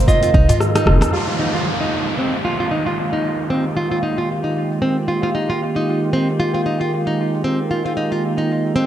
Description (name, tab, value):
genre	organic downtempo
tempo	114 BPM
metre	4/4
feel	swing 57% on 16ths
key	F minor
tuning	A4 = 440 Hz
part	clean lap steel guitar	melody	0.0-0.8 s	Eb5	-23 LUFS	right 4 dB	dub echo
part	warm analog pad	sustained chords	0.0-8.9 s	Eb3 to Bb4	-22 LUFS	right 2 dB	chorus, sidechain pumping
part	upright bass	bass	0.0-1.1 s	F1 to F2	-16 LUFS	equal	sidechain pumping
part	nylon-string guitar	arpeggios	0.1-8.9 s	C4 to F4	-21 LUFS	equal	low-pass filter, dub echo
part	deep house drum kit	drums	0.1-8.7 s	hi-hat, rim click, shaker	-21 LUFS	equal	overdrive, low-pass filter on perc, low-pass filter on hats, low-pass filter on snare, low-pass filter on room
part	electronic kick drum	drums	0.1-0.5 s	none	-14 LUFS	equal	overdrive
part	darbuka	percussion	0.5-0.6 s	none	-22 LUFS	left 2 dB	none
part	downlifter	sound effects	1.1-5.3 s	none	-25 LUFS	equal	none
room	wet spring reverb, RT60 2.2 s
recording	echo-heavy mix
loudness	-16 LUFS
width	side -11 dB against mid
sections	0.0-1.1 A section; 1.1-8.9 B section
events	kick drops out 0.6-1.1; drum fill 0.6-1.1; band accent 1.0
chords	0.0 Fm11